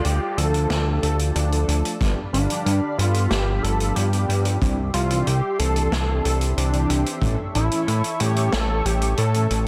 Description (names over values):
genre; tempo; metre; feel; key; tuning
synthwave; 92 BPM; 4/4; straight; D minor; A4 = 440 Hz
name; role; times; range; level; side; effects
unison lead; melody; 0.0-9.6 s; D4 to A4; -28 LUFS; equal; digital delay
lush unison pad; sustained chords; 0.0-9.7 s; F4 to C#6; -35 LUFS; equal; chorus, sidechain pumping
mellow synth brass; stabs; 0.0-9.7 s; G2 to C#5; -32 LUFS; equal; chorus
fat analog bass; bass; 0.0-9.7 s; G1 to A2; -24 LUFS; equal; tube saturation
vintage drum kit; drums; 0.0-9.6 s; hi-hat, snare drum; -31 LUFS; equal; gated reverb
kick drum; drums; 2.0-7.3 s; none; -27 LUFS; equal; none
room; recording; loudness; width
light reverb; none; -22 LUFS; mono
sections
0.0-9.7 A section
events
none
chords
0.0 Dm; 2.0 G7; 4.6 Cadd9; 7.2 A